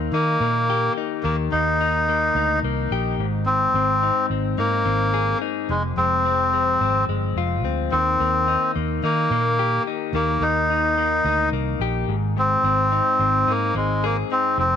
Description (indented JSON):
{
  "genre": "indie pop",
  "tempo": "108 BPM",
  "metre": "4/4",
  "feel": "straight",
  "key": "Eb major",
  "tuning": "A4 = 440 Hz",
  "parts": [
    { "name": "direct-recorded clean electric guitar", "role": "arpeggios", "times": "0.0-14.8 s", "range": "F2 to Ab4", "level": "-26 LUFS", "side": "left 14 dB", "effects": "none" },
    { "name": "vintage muted fingered electric bass", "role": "bass", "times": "0.0-14.8 s", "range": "F1 to Eb3", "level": "-25 LUFS", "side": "right 2 dB", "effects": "none" },
    { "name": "melodica", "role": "melody", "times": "0.1-14.8 s", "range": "Ab3 to Eb4", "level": "-20 LUFS", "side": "equal", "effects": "none" }
  ],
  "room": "light reverb, small room ambience",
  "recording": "1960s-style stereo",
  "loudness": "-18 LUFS",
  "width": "side -8 dB against mid",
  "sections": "0.0-14.8 A section",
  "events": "none",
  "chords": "0.0 Eb; 3.2 Ab; 5.7 Fm; 7.9 Eb; 12.1 Ab"
}